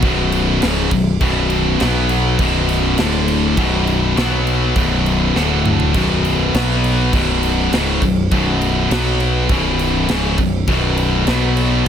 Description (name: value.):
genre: heavy metal.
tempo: 101 BPM.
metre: 4/4.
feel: straight.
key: B minor.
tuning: A4 = 440 Hz.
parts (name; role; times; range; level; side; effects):
heavy high-gain guitar; riff; 0.0-11.9 s; B1 to B3; -20 LUFS; right 12 dB; distortion.
high-gain distorted guitar; riff; 0.0-11.9 s; B1 to B3; -19 LUFS; left 10 dB; distortion.
growling picked electric bass; bass; 0.0-11.8 s; B0 to B1; -19 LUFS; right 1 dB; overdrive.
tight metal drum kit; drums; 0.0-11.7 s; crash cymbal, kick drum, snare drum, splash cymbal, toms; -22 LUFS; right 1 dB; none.
room: small room ambience.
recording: none.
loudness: -14 LUFS.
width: side -8 dB against mid.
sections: 0.0-11.9 A section.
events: drum fill 5.4-5.9.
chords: 0.0 B5; 3.0 D5; 3.6 B5; 5.4 D5; 5.9 B5.